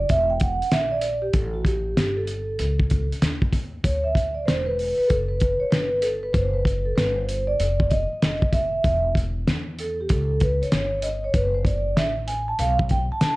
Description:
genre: hip hop, jazz-hop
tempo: 96 BPM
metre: 4/4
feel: swing 65% on 16ths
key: unclear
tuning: A4 = 440 Hz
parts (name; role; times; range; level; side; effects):
- vibraphone with soft mallets; accompaniment; 0.0-13.4 s; F#4 to A5; -24 LUFS; right 1 dB; plate reverb
- upright bass; bass; 0.0-13.4 s; E1 to F2; -27 LUFS; equal; none
- cloth-damped thuddy drum kit; drums; 0.1-13.4 s; hi-hat, kick drum, snare drum; -23 LUFS; equal; vintage 12-bit sampler grit
room: moderate studio reverb, RT60 0.6 s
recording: dark, warm production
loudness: -20 LUFS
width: side -20 dB against mid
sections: 0.0-13.4 A section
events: vibraphone solo 0.0-13.4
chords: 0.0 G5; 1.3 A7; 3.8 D; 6.3 Am13/F# (rootless); 7.6 Dmadd9/F; 8.8 Esus4; 10.1 A9; 11.3 F#madd9; 12.6 G9/B (rootless)

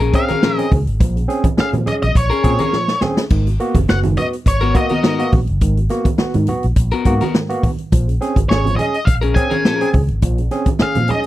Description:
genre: funk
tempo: 104 BPM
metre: 4/4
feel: straight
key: unclear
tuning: A4 = 440 Hz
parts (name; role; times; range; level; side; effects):
- electric guitar at the edge of break-up; accompaniment; 0.0-9.9 s; Cb4 to Bb4; -20 LUFS; left 6 dB; none
- fingered electric bass with an envelope filter; bass; 0.0-11.1 s; Gb1 to Bb2; -18 LUFS; equal; none
- swinging big-band drum kit; drums; 0.0-11.3 s; crash cymbal, hi-hat, kick drum, snare drum; -17 LUFS; equal; none
- barky tine electric piano; stabs; 0.1-11.3 s; Ab2 to Ab4; -21 LUFS; right 2 dB; wide subtle chorus
- octave-fuzz lead guitar; melody; 0.2-11.3 s; Db5 to Ab5; -21 LUFS; left 1 dB; distortion
- congas; percussion; 0.3-11.2 s; none; -25 LUFS; right 5 dB; none
room: small room ambience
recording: dry, close 1970s-style studio recording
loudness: -14 LUFS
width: side -15 dB against mid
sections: 0.0-11.3 A section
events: drum fill 2.7-3.3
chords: 0.0 Bbm7; 3.3 Abm9; 7.9 Bbm7

